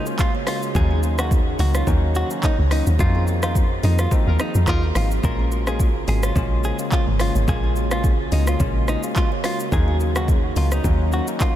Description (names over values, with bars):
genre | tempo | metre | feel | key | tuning
afrobeats | 107 BPM | 4/4 | swing 55% on 16ths | Bb minor | A4 = 440 Hz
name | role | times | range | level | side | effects
direct-recorded clean electric guitar | melody | 0.0-11.5 s | Eb4 to Bb4 | -28 LUFS | equal | spring reverb, diffuse ambient delay
bell-like tine electric piano | accompaniment | 0.0-11.5 s | F3 to F4 | -29 LUFS | left 5 dB | none
ethereal airy pad | sustained chords | 0.0-11.6 s | Db3 to Ab4 | -30 LUFS | equal | ensemble chorus, built-in reverb
kalimba | riff | 0.0-11.5 s | Db4 to F5 | -32 LUFS | right 8 dB | diffuse ambient delay
afro-pop drum kit | drums | 0.1-11.5 s | handclaps, hi-hat, kick drum, rim click, shaker | -22 LUFS | equal | none
deep log drum bass | bass | 0.8-11.2 s | Ab1 to F2 | -20 LUFS | equal | none
warm horn section | second line | 4.3-4.9 s | Eb4 to Bb4 | -37 LUFS | left 3 dB | none
room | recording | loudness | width
light reverb, digital ambience | none | -18 LUFS | side -12 dB against mid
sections
0.0-11.6 A section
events
band accent 3.0-5.2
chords
0.0 Bbm7; 0.8 Ebm7; 3.0 F7sus4; 5.2 Bbm7; 9.7 Ebm7